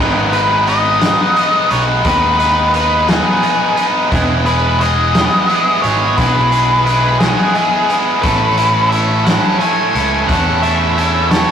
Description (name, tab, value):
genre	indie rock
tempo	58 BPM (dotted quarters)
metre	6/8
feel	straight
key	E major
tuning	A4 = 440 Hz
part	biting overdriven guitar	riff	0.0-11.5 s	E2 to B4	-15 LUFS	right 1 dB	none
part	growling picked electric bass	bass	0.0-11.4 s	E1 to E2	-18 LUFS	equal	overdrive
part	octave-fuzz lead guitar	melody	0.3-11.5 s	G#4 to G#5	-16 LUFS	left 2 dB	distortion, tape echo
part	raw garage drum kit	drums	0.3-11.5 s	hi-hat, kick drum, snare drum	-19 LUFS	equal	none
room	moderate studio reverb, RT60 0.6 s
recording	rough rehearsal-room recording, warm saturation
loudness	-11 LUFS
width	side -8 dB against mid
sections	0.0-11.5 A section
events	none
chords	0.0 G#m; 4.1 E; 8.2 A